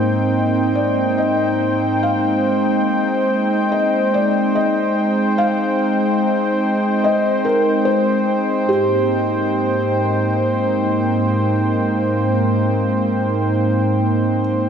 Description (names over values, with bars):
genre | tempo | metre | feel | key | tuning
ambient | 72 BPM | 4/4 | straight | unclear | A4 = 441 Hz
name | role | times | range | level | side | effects
warm analog pad | sustained chords | 0.0-14.7 s | Ab2 to G5 | -16 LUFS | equal | chorus
analog drone | drone | 0.0-14.7 s | C4 to Eb4 | -26 LUFS | right 2 dB | chorus
felt-muted upright piano | melody | 0.8-14.4 s | G4 to F5 | -22 LUFS | left 1 dB | diffuse ambient delay
room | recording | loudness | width
wet concert hall reverb, RT60 2.3 s | none | -15 LUFS | side -7 dB against mid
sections
0.0-14.7 A section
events
fade-in on felt piano 0.0-14.7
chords
0.0 Eb6/Ab